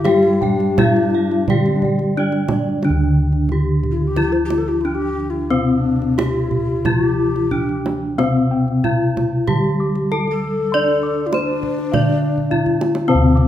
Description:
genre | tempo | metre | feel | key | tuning
Javanese gamelan | 82-106 BPM | 4/4 | straight | D slendro | A4 = 440 Hz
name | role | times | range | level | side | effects
gamelan-type bronze metallophone | melody | 0.0-13.5 s | C4-25c to D5 | -20 LUFS | left 1 dB | none
breathy mellow tenor recorder | second line | 0.0-13.0 s | C4-24c to C5-24c | -25 LUFS | left 6 dB | none
gamelan-type bronze metallophone | accompaniment | 0.0-13.5 s | C3-25c to D4 | -22 LUFS | equal | none
gamelan-type bossed gongs | arpeggios | 0.0-2.5, 8.2-13.5 s | D5 to D6 | -27 LUFS | left 4 dB | none
gamelan-type bronze metallophone | arpeggios | 0.0-2.8 s | D5 to G5 | -28 LUFS | right 2 dB | none
gamelan-type bossed gongs | bass | 0.0-13.5 s | D2 to D5 | -21 LUFS | left 1 dB | none
kendang | percussion | 0.1-13.4 s | none | -24 LUFS | right 4 dB | none
room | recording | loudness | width
moderate recital hall reverb, RT60 1.4 s | minimal, uncompressed stereo recording | -15 LUFS | side -11 dB against mid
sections
0.0-2.9 A section; 2.9-13.1 B section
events
drum fill 12.4-13.1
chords
none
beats
| 0.06 0.78 1.49 2.18 | 2.85 3.52 4.18 4.85 | 5.52 6.18 6.85 7.52 | 8.19 8.85 9.49 10.12 | 10.74 11.34 11.94 12.52 | 13.09

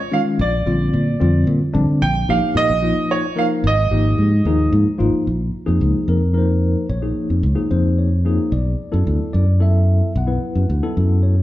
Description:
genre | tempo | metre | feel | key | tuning
electric jazz fusion | 74 BPM (dotted quarters) | 6/8 | straight | unclear | A4 = 440 Hz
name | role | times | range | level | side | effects
clear grand piano | melody | 0.0-4.7 s | Db5 to G5 | -21 LUFS | right 4 dB | none
tine electric piano | accompaniment | 0.1-11.4 s | D3 to F#5 | -21 LUFS | left 2 dB | medium tremolo
fingered electric bass | bass | 0.4-11.4 s | Ab1 to Bb2 | -17 LUFS | equal | none
room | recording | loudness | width
wet large studio reverb, RT60 1.4 s | band playing live in one room | -15 LUFS | side -14 dB against mid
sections
0.0-5.3 A section; 5.3-11.4 B section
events
tine electric piano fill 11.0-11.4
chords
0.4 Bb69; 2.0 Bbsus4; 3.6 Absus2; 5.3 Bbm11; 8.5 Bm7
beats
| 0.39 1.20 | 2.02 2.83 | 3.64 4.46 | 5.27 6.08 | 6.90 7.71 | 8.53 9.34 | 10.15 10.97

